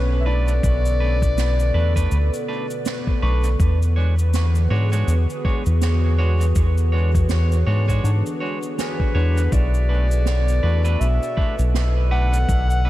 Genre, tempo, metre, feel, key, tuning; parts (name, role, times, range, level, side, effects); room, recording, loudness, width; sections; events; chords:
ambient dub; 81 BPM; 4/4; swing 58% on 16ths; B dorian; A4 = 440 Hz
warbly tape-like pad; sustained chords; 0.0-12.9 s; B2 to B4; -29 LUFS; equal; chorus, built-in reverb
concert harp; arpeggios; 0.0-12.3 s; B3 to C#6; -34 LUFS; left 4 dB; dub echo
round analog bass; bass; 0.0-12.9 s; B1 to G#2; -18 LUFS; equal
clear clarinet; melody; 0.2-2.5, 8.8-12.9 s; B4 to F#5; -28 LUFS; left 2 dB; dub echo
clean electric guitar; stabs; 0.3-12.9 s; G#3 to C#5; -31 LUFS; right 3 dB; dub echo
soft-mallet drum kit; drums; 0.5-12.8 s; cabasa, snare drum, toms; -32 LUFS; right 4 dB; small room ambience, dub echo
electronic kick drum; drums; 0.6-12.7 s; -22 LUFS; equal; small room ambience
studio ambience; -17 LUFS; side -15 dB against mid
0.0-12.9 A section
0.0 Bm7; 3.6 E13; 9.5 Bm7